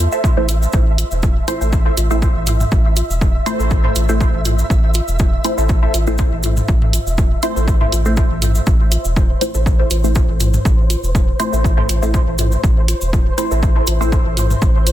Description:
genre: dub techno.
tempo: 121 BPM.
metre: 4/4.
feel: swing 54% on 16ths.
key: A minor.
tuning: A4 = 440 Hz.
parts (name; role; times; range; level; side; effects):
warm sub bass; bass; 0.0-14.9 s; E1 to A1; -17 LUFS; equal; sidechain pumping.
flickering grainy texture; texture; 0.0-14.9 s; C5 to E5; -28 LUFS; right 1 dB; built-in reverb, sidechain pumping.
filtered dub chord stab; riff; 0.1-13.9 s; A4 to E5; -28 LUFS; right 1 dB; phaser, wide subtle chorus, sidechain pumping, dub echo.
cabasa; percussion; 0.1-14.9 s; none; -29 LUFS; right 1 dB; none.
electronic kick drum; drums; 0.2-14.7 s; none; -16 LUFS; equal; none.
electronic congas and toms; percussion; 0.2-14.9 s; none; -27 LUFS; left 2 dB; sidechain pumping on perc, sidechain pumping on toms, dub echo.
filtered dub chord stab; stabs; 0.4-14.2 s; A3 to C5; -23 LUFS; equal; phaser, sidechain pumping, dub echo.
electronic hi-hat; drums; 0.5-14.9 s; none; -23 LUFS; right 3 dB; none.
room: little or no reverb.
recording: dense, heavily limited modern master.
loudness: -13 LUFS.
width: side -13 dB against mid.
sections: 0.0-14.9 A section.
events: none.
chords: 0.0 Am.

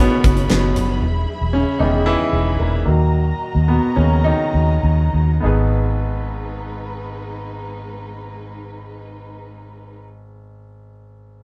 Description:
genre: piano-driven pop.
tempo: 98-116 BPM.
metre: 4/4.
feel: straight.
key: G# minor.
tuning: A4 = 440 Hz.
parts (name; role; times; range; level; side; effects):
bright concert grand piano; accompaniment; 0.0-11.4 s; G#1 to B4; -25 LUFS; equal; none.
dark studio string section; sustained chords; 0.0-10.0 s; G#3 to B5; -32 LUFS; equal; none.
vintage muted fingered electric bass; bass; 0.0-10.0 s; E1 to D#2; -20 LUFS; equal; none.
huge arena drum kit; drums; 0.2-0.9 s; hi-hat, kick drum, snare drum; -21 LUFS; equal; none.
room: moderate small room reverb, RT60 0.6 s.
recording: band playing live in one room.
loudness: -18 LUFS.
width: mono.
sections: 0.0-5.4 A section; 5.4-10.3 B section.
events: grand piano solo 0.0-5.4; slowing down 1.0-5.4.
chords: 0.0 F#sus4; 1.0 E; 2.9 D#m; 5.4 G#m.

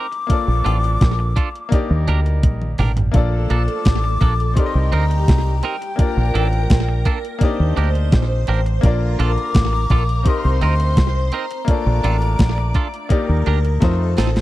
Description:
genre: lovers rock reggae.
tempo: 84 BPM.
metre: 4/4.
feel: straight.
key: Bb major.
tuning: A4 = 439 Hz.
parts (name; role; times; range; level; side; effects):
breathy concert flute; melody; 0.0-13.5 s; G5 to D6; -26 LUFS; left 4 dB; tape echo.
bright grand piano; accompaniment; 0.0-14.4 s; A3 to Eb5; -27 LUFS; left 5 dB; none.
twangy electric guitar; stabs; 0.0-14.4 s; Bb3 to Bb4; -26 LUFS; right 7 dB; none.
crisp 8-bit digital drum machine; drums; 0.1-14.4 s; hi-hat, kick drum, snare drum, toms; -16 LUFS; equal; slapback echo.
bright horn section; second line; 0.3-14.2 s; Bb2 to Bb4; -33 LUFS; right 2 dB; none.
deep dub fingered electric bass; bass; 0.5-14.4 s; A1 to F2; -17 LUFS; equal; none.
string machine, full ensemble; second line; 3.1-14.4 s; G4 to D6; -29 LUFS; equal; phaser, ensemble chorus.
room: digital ambience.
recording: dry, close 1970s-style studio recording.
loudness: -15 LUFS.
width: side -16 dB against mid.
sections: 0.0-14.4 A section.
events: drum fill 2.4-3.1, 13.8-14.4.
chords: 0.3 Bbmaj7; 1.7 Ebmaj7; 3.1 Bbmaj7; 4.6 Cm7; 6.0 Bbmaj7; 7.4 Ebmaj7; 8.8 Bbmaj7; 10.3 Cm7; 11.7 Bbmaj7; 13.1 Ebmaj7; 13.8 F7.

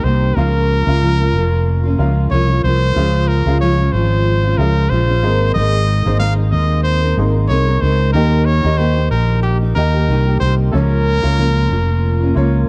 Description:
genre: acoustic pop.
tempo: 92 BPM.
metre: 4/4.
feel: swing 55% on 16ths.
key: unclear.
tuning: A4 = 437 Hz.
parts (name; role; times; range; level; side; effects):
clear trumpet; melody; 0.0-12.7 s; G4 to F5; -23 LUFS; equal; none.
clear upright piano; accompaniment; 0.0-12.7 s; Bb3 to C6; -29 LUFS; equal; none.
fingerpicked steel-string acoustic guitar; accompaniment; 0.0-12.7 s; Db3 to Bb4; -23 LUFS; equal; double-tracked.
mellow fretless electric bass; bass; 0.0-12.7 s; F1 to Eb2; -17 LUFS; equal; none.
room: light reverb, small room ambience.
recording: dark, warm production.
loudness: -15 LUFS.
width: mono.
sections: 0.0-12.7 A section.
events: none.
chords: 0.4 Bbm; 3.0 Db; 5.2 Abadd9; 8.1 Eb; 10.7 Bbm.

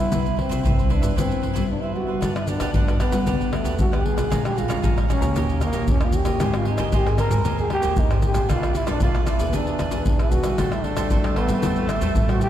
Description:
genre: samba and choro.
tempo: 115 BPM.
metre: 4/4.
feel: straight.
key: unclear.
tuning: A4 = 440 Hz.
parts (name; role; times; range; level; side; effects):
growling trombone; melody; 0.0-12.5 s; A3 to Bb4; -26 LUFS; equal; none.
cavaquinho; accompaniment; 0.0-12.5 s; D4 to Bb5; -33 LUFS; right 5 dB; none.
nylon-string guitar; accompaniment; 0.0-12.5 s; G2 to Bb4; -29 LUFS; left 1 dB; none.
upright bass; bass; 0.0-12.5 s; Ab1 to G3; -26 LUFS; equal; none.
maracas, surdo, pandeiro and tamborim; percussion; 0.1-12.5 s; none; -22 LUFS; equal; none.
breathy tenor saxophone; second line; 10.6-12.5 s; A3; -30 LUFS; right 1 dB; none.
room: wet cathedral reverb, RT60 4.1 s.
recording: recorded in a church or concert hall.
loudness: -19 LUFS.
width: side -11 dB against mid.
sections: 0.0-2.2 A section; 2.2-12.5 B section.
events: break 1.7-2.2.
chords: 0.0 Cmaj7; 2.2 Gmaj9; 4.3 Bbm7; 5.4 Eb7; 6.4 Abmaj9; 8.5 Bm7b5; 9.5 E7; 10.6 Am7.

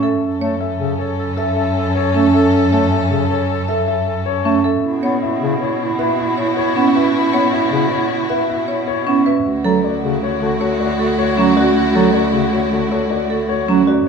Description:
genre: classical, minimalist pattern music.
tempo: 156 BPM.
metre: 6/4.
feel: straight.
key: D major.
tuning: A4 = 442 Hz.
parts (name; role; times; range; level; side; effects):
dark grand piano; melody; 0.0-14.1 s; A4 to E5; -24 LUFS; left 10 dB; none.
marimba with medium hard mallets; arpeggios; 0.0-14.1 s; C#4 to E5; -19 LUFS; right 4 dB; none.
rich cello; bass; 0.0-14.0 s; D2 to B2; -21 LUFS; right 1 dB; none.
warm clarinet; second line; 0.2-13.8 s; E4 to A4; -23 LUFS; right 1 dB; none.
warm studio violin section; sustained chords; 0.2-13.8 s; C#4 to A4; -23 LUFS; left 2 dB; none.
mellow bass clarinet; accompaniment; 0.4-13.8 s; C#3 to B3; -22 LUFS; equal; none.
room: wet large studio reverb, RT60 1.2 s.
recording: heard from further back in the room.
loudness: -14 LUFS.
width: side -6 dB against mid.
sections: 0.0-14.1 A section.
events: none.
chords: 0.2 F#m; 4.8 Bsus4; 9.5 Dadd9.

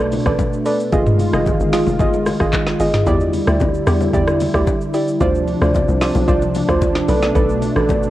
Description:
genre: amapiano.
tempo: 112 BPM.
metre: 4/4.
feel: straight.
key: unclear.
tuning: A4 = 440 Hz.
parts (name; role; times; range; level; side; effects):
warm analog pad; sustained chords; 0.0-8.1 s; B2 to F4; -21 LUFS; equal; chorus, cassette tape.
tight log drum bass; bass; 0.0-8.1 s; F1 to E2; -20 LUFS; equal; none.
afro-pop drum kit; drums; 0.1-8.1 s; handclaps, hi-hat, kick drum, rim click, shaker, snare drum, toms; -20 LUFS; equal; overdrive, vintage 12-bit sampler grit, cassette tape.
bongos and congas; percussion; 0.1-8.0 s; none; -27 LUFS; left 5 dB; none.
soft round pluck; stabs; 0.3-8.1 s; E4 to Eb5; -19 LUFS; right 2 dB; chorus, cassette tape, analog delay.
room: light reverb.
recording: home recording on cassette.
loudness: -14 LUFS.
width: side -14 dB against mid.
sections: 0.0-8.1 A section.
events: none.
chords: 0.0 Bm7; 0.9 Fm7; 3.1 Em7; 5.2 Dm7; 7.1 Bm7.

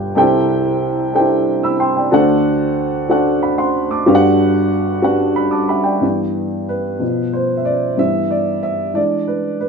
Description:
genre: gospel.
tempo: 62 BPM (dotted quarters).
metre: 6/8.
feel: straight.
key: G major.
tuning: A4 = 440 Hz.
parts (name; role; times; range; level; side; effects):
dark upright piano; solo; 0.0-9.7 s; G1 to E6; -14 LUFS; equal; none.
room: moderate stone room reverb, RT60 1.1 s.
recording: band playing live in one room.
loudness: -14 LUFS.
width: side -5 dB against mid.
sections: 0.0-6.0 A section; 6.0-9.7 B section.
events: upright piano fill 5.1-6.0; upright piano solo 6.0-9.7.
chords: 0.2 C6; 2.1 D7; 4.1 Gmaj7; 6.0 G6; 7.0 Bdim; 8.0 G6; 9.0 E7.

